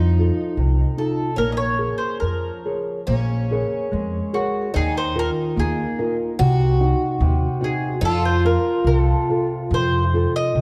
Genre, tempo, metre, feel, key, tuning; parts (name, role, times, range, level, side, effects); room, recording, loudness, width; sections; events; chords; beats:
fado-style ballad; 72 BPM; 2/4; uneven beats, rubato; Bb minor; A4 = 439 Hz
picked twelve-string acoustic guitar; second line; 0.0-10.6 s; Db4 to Gb4; -29 LUFS; equal
nylon-string guitar; accompaniment; 0.0-10.6 s; C3 to Db5; -26 LUFS; equal
upright bass; bass; 0.0-10.6 s; Bb1 to F2; -23 LUFS; equal
mandolin; melody; 1.0-10.6 s; Gb4 to Eb5; -27 LUFS; equal
moderate concert hall reverb, RT60 2.2 s; dark, warm production; -21 LUFS; mono
0.0-3.1 A section; 3.1-10.6 A section
0.0 F7; 1.4 Bbm7; 4.7 Ebsus2; 6.4 Cdim; 8.0 F
0.57 | 1.37 2.21 | 3.07 3.91 | 4.75 5.57 | 6.39 7.20 | 8.01 8.85 | 9.70 10.54